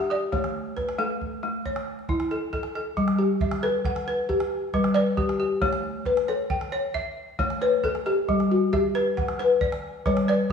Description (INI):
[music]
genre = west african traditional, West African string and xylophone music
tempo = 90 BPM (dotted quarters)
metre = 12/8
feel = straight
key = G lydian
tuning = A4 = 440 Hz
[part]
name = balafon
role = melody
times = 0.0-10.5 s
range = F#4 to D5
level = -26 LUFS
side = left 2 dB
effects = none
[part]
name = balafon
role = arpeggios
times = 0.0-10.5 s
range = G3 to G5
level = -25 LUFS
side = left 1 dB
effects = none
[part]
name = calabash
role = percussion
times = 0.0-10.5 s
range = none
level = -32 LUFS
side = right 2 dB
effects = none
[sound]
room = moderate recital hall reverb, RT60 1.6 s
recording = studio reverb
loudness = -23 LUFS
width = side -6 dB against mid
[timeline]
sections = 0.0-3.0 A section; 3.0-10.5 B section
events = balafon solo 3.0-10.5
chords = 0.3 A; 3.0 G; 5.6 A; 8.3 G